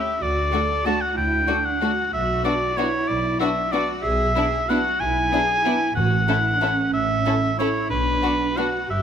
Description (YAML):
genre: classical, orchestral ballroom waltz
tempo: 187 BPM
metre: 3/4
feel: uneven beats, rubato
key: unclear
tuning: A4 = 438 Hz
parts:
  - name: bright oboe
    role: second line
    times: 0.0-9.0 s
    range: B4 to A5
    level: -22 LUFS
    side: left 1 dB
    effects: none
  - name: warm studio cello section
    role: bass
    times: 0.0-9.0 s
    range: C#4 to A4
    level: -27 LUFS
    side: right 3 dB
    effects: none
  - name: dark symphonic double bass section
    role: bass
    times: 0.2-9.0 s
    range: G1 to D2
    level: -27 LUFS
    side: right 2 dB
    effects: none
  - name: rich studio violin section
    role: melody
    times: 0.5-8.7 s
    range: E4 to A4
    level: -31 LUFS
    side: left 4 dB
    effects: none
  - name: warm symphonic violin section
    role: second line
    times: 0.5-8.7 s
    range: D4 to E4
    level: -30 LUFS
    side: left 4 dB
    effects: none
  - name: dark symphonic viola section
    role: accompaniment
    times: 0.5-8.7 s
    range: A3 to C#4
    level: -30 LUFS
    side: right 1 dB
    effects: none
  - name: timpani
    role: percussion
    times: 6.0-6.4 s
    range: A2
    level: -30 LUFS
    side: left 2 dB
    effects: none
room: moderate recital hall reverb, RT60 1.5 s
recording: none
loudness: -19 LUFS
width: side -8 dB against mid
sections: 0.0-9.0 A section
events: none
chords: 0.2 D; 2.1 Bm; 4.0 E/B; 6.0 A; 7.9 Bm